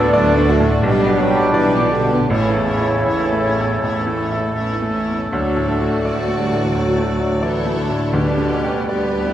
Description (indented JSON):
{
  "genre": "classical, romantic movement for piano and orchestra",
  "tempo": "75-90 BPM",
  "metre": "4/4",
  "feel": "rubato",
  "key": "D major",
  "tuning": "A4 = 440 Hz",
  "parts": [
    { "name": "clear baby grand piano", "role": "melody", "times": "0.0-9.3 s", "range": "A1 to E5", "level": "-22 LUFS", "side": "left 1 dB", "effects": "none" },
    { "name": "rich studio violin section", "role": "melody", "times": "0.0-9.3 s", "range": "F#4 to D5", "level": "-33 LUFS", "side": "left 5 dB", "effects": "none" },
    { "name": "clear studio violin section", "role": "second line", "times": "0.0-9.3 s", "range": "B3 to A4", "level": "-30 LUFS", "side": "left 2 dB", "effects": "none" },
    { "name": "concert flute", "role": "second line", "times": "0.0-9.3 s", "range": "C#5 to D5", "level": "-28 LUFS", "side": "left 2 dB", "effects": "none" },
    { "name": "warm clarinet", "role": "second line", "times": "0.0-9.3 s", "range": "D4 to G4", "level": "-29 LUFS", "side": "left 3 dB", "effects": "none" },
    { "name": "warm oboe", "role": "second line", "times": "0.0-9.3 s", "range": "G4 to B4", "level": "-27 LUFS", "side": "right 1 dB", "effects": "none" },
    { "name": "dark bassoon", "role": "accompaniment", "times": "0.0-9.3 s", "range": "B2 to B3", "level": "-23 LUFS", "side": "right 1 dB", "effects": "none" },
    { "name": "warm chamber viola section", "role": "accompaniment", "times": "0.0-9.3 s", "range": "F#3 to F#4", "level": "-28 LUFS", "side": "left 1 dB", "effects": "none" },
    { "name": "clear trombone section", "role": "sustained chords", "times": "0.0-9.3 s", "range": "A2 to A3", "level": "-28 LUFS", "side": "right 4 dB", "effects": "none" },
    { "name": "warm French horn section", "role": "sustained chords", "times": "0.0-9.3 s", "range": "B2 to B3", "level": "-27 LUFS", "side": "left 3 dB", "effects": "none" },
    { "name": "mellow trumpet section", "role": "stabs", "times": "0.0-9.3 s", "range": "D4 to E4", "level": "-26 LUFS", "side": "right 1 dB", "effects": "none" },
    { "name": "dark chamber double bass section", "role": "bass", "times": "0.0-9.3 s", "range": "A1 to D2", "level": "-27 LUFS", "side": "right 2 dB", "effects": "none" },
    { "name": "warm chamber cello section", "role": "bass", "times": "0.0-9.3 s", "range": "D2 to B2", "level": "-26 LUFS", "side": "right 3 dB", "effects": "none" },
    { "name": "warm tuba", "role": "bass", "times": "0.0-9.3 s", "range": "A1 to D2", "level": "-28 LUFS", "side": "right 3 dB", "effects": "none" },
    { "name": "timpani", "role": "percussion", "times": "8.1-9.2 s", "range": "D3", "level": "-22 LUFS", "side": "left 1 dB", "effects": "none" }
  ],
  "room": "moderate scoring stage reverb, RT60 1.7 s",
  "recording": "none",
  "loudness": "-15 LUFS",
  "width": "side -11 dB against mid",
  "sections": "0.0-9.3 A section",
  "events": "none",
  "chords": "0.0 D; 0.8 G/B; 2.3 A; 5.3 D; 8.1 G/D",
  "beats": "0.14 0.84 1.54 | 2.29 3.05 3.82 4.57 | 5.33 6.05 6.75 7.43 | 8.13 8.90"
}